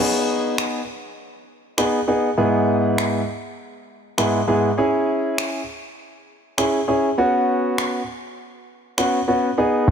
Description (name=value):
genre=dance-pop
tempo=100 BPM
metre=4/4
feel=straight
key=unclear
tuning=A4 = 438 Hz
part: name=warm concert grand piano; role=accompaniment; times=0.0-9.9 s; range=G#2 to G#4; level=-19 LUFS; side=equal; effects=none
part: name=electronic finger snaps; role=drums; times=0.6-9.1 s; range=none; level=-26 LUFS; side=left 1 dB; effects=overdrive
part: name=plucky analog bass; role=bass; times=9.9 s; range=G#1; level=-12 LUFS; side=equal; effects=none
room=moderate lush hall reverb, RT60 2.7 s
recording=none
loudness=-18 LUFS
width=side -7 dB against mid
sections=0.0-9.9 A section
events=none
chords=0.0 G#m; 2.4 E/G#; 4.8 C#m; 7.2 Bsus2